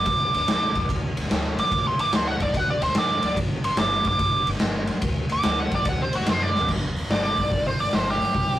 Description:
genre	blues rock power trio and southern rock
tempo	145 BPM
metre	4/4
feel	swing 67% on 8ths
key	unclear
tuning	A4 = 443 Hz
part	smooth overdriven lead guitar	melody	0.0-8.6 s	F#4 to D6	-23 LUFS	right 1 dB	wah
part	upright bass	bass	0.0-8.6 s	G1 to D3	-31 LUFS	equal	none
part	raw garage drum kit	drums	0.1-8.5 s	crash cymbal, hi-hat, kick drum, ride cymbal, snare drum, toms	-24 LUFS	equal	none
room	light reverb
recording	rough rehearsal-room recording, warm saturation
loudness	-20 LUFS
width	side -13 dB against mid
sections	0.0-6.7 A section; 6.7-8.6 A section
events	lead electric guitar solo 0.0-6.7, 6.7-8.6; drum fill 6.5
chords	0.1 N.C.; 3.4 G5; 5.0 D; 6.7 G5

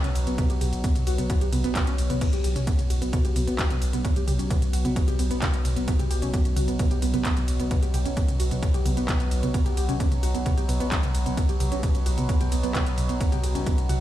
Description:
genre	driving peak-time techno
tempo	131 BPM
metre	4/4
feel	straight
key	unclear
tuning	A4 = 443 Hz
part	warbly dusty pluck	riff	0.0-14.0 s	B3 to G4	-30 LUFS	right 2 dB	wide subtle chorus, sidechain pumping, ping-pong delay
part	analog drone	drone	0.0-14.0 s	B2 to F#3	-32 LUFS	equal	chorus, sidechain pumping
part	techno drum kit	drums	0.0-14.0 s	crash cymbal, handclaps, hi-hat, ride cymbal, toms	-31 LUFS	equal	overdrive, sidechain pumping on hats, sidechain pumping on toms, sidechain pumping on cymbals
part	saturated sub bass	bass	0.2-14.0 s	B1	-28 LUFS	equal	overdrive, sidechain pumping, low-pass filter
part	electronic kick drum	drums	0.4-13.8 s	none	-24 LUFS	equal	none
room	digital ambience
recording	played on a big sound system in a bare room, stone room reverb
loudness	-22 LUFS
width	side -13 dB against mid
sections	0.0-14.0 A section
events	none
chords	0.0 B5

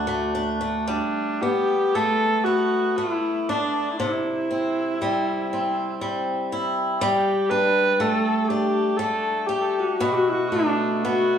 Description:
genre	celtic folk, Celtic slow air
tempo	59 BPM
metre	3/4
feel	uneven beats, rubato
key	G major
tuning	A4 = 439 Hz
part	picked swing-style acoustic guitar	accompaniment	0.0-11.4 s	D2 to G4	-24 LUFS	equal	none
part	warm viola	melody	0.9-11.4 s	D4 to B4	-23 LUFS	equal	none
room	moderate studio reverb, RT60 0.9 s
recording	band playing live in one room, studio reverb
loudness	-20 LUFS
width	side -8 dB against mid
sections	0.9-11.4 A section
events	none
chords	0.0 D; 0.9 Gadd9; 4.0 C; 7.0 Gsus2; 10.0 Bm7

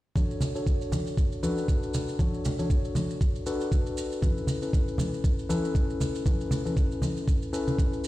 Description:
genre	afro house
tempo	118 BPM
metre	4/4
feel	swing 56% on 16ths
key	B minor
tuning	A4 = 440 Hz
part	mellow tine electric piano	stabs	0.2-8.1 s	C#4 to C#5	-32 LUFS	left 2 dB	sidechain pumping, low-pass filter, ping-pong delay
part	electronic kick drum	drums	0.2-7.9 s	none	-25 LUFS	equal	none
part	shaker	drums	0.2-8.1 s	none	-43 LUFS	right 4 dB	none
part	congas	percussion	0.2-7.8 s	none	-31 LUFS	equal	none
room	light reverb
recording	played on a big sound system in a bare room, stone room reverb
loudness	-25 LUFS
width	side -16 dB against mid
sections	0.2-8.1 A section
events	none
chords	0.2 Bm7; 4.2 Aadd9

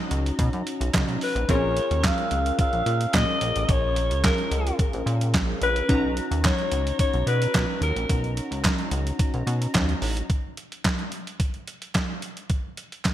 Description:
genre	early-eighties boogie funk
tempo	109 BPM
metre	4/4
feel	straight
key	unclear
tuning	A4 = 436 Hz
part	funky polysynth comp	accompaniment	0.0-10.3 s	C4 to A#5	-30 LUFS	left 1 dB	chorus
part	chorused synth bass	bass	0.1-10.2 s	A1 to B2	-25 LUFS	equal	none
part	crisp 8-bit digital drum machine	drums	0.1-13.1 s	handclaps, hi-hat, kick drum, snare drum	-25 LUFS	equal	overdrive
part	group handclap	percussion	0.9-13.1 s	none	-36 LUFS	right 5 dB	none
part	growling alto saxophone	melody	1.2-8.3 s	Bb4 to F5	-26 LUFS	left 1 dB	none
room	light reverb, digital ambience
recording	bright 1980s-style digital production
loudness	-22 LUFS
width	side -12 dB against mid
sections	0.0-10.3 A section; 10.3-13.1 B section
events	none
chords	0.0 Bmaj9; 1.5 Bbm7; 5.9 Bmaj9; 10.3 N.C.

